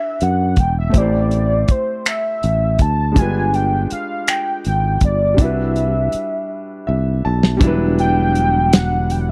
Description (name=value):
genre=slow six-eight R&B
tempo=54 BPM (dotted quarters)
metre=6/8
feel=straight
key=E minor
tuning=A4 = 439 Hz
part: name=warm velvety synth lead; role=melody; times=0.0-9.3 s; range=C5 to A5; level=-23 LUFS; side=equal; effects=chorus, slapback echo
part: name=clear concert grand piano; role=accompaniment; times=0.0-9.3 s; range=F#3 to A5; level=-26 LUFS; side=equal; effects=none
part: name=sustaining fretless electric bass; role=bass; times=0.2-9.3 s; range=E1 to F#2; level=-20 LUFS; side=equal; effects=none
part: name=warm soul drum kit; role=drums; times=0.2-9.3 s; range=finger snaps, hi-hat, kick drum, snare drum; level=-17 LUFS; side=equal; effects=none
part: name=mellow tonewheel organ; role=sustained chords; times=7.6-9.3 s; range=D3 to D4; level=-29 LUFS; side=equal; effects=none
room=small room reverb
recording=dry, close 1970s-style studio recording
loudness=-17 LUFS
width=mono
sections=0.0-7.6 A section; 7.6-9.3 B section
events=drum fill 6.5-7.6; grand piano fill 6.5-7.6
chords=0.0 Em9; 0.9 Am7; 3.2 G7b9; 5.4 Cmaj9#11; 7.6 Em9